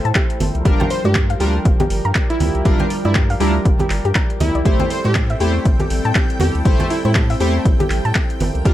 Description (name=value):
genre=deep house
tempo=120 BPM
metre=4/4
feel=swing 58% on 16ths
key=A phrygian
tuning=A4 = 440 Hz
part: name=warm analog pad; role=sustained chords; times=0.0-8.7 s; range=F3 to C5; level=-28 LUFS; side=left 1 dB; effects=chorus, sidechain pumping
part: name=round analog bass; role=bass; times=0.0-8.7 s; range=G1 to A2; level=-20 LUFS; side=equal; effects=sidechain pumping
part: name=deep dark ambient pad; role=texture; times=0.0-8.7 s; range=E4 to G5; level=-30 LUFS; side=right 1 dB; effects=chorus, built-in reverb, sidechain pumping
part: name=soft round pluck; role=arpeggios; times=0.1-8.7 s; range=G4 to Bb5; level=-26 LUFS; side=left 2 dB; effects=chorus, sidechain pumping, tape echo
part: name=deep house drum kit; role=drums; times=0.1-8.7 s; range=handclaps, hi-hat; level=-25 LUFS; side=equal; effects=studio reverb
part: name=electronic kick drum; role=drums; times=0.2-8.7 s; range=none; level=-16 LUFS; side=equal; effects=studio reverb
part: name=congas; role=percussion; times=0.4-8.5 s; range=none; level=-24 LUFS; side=right 3 dB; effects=none
part: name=chorused polysynth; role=stabs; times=0.6-8.7 s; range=G3 to C5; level=-24 LUFS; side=equal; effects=vintage 12-bit sampler grit, sidechain pumping, tape echo
part: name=plucky unison lead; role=melody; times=0.9-7.1 s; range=E4 to C5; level=-26 LUFS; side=right 1 dB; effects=lush chorus, tape echo
part: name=string machine, violins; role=texture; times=4.7-8.7 s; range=G5 to G6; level=-32 LUFS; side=equal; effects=ensemble chorus, sidechain pumping
room=little or no reverb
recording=none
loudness=-14 LUFS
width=side -13 dB against mid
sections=0.0-8.7 A section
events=none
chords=0.4 Gm7; 4.7 Am7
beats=0.15 | 0.65 1.15 1.65 2.15 | 2.65 3.15 3.65 4.15 | 4.65 5.15 5.65 6.15 | 6.65 7.15 7.65 8.15 | 8.65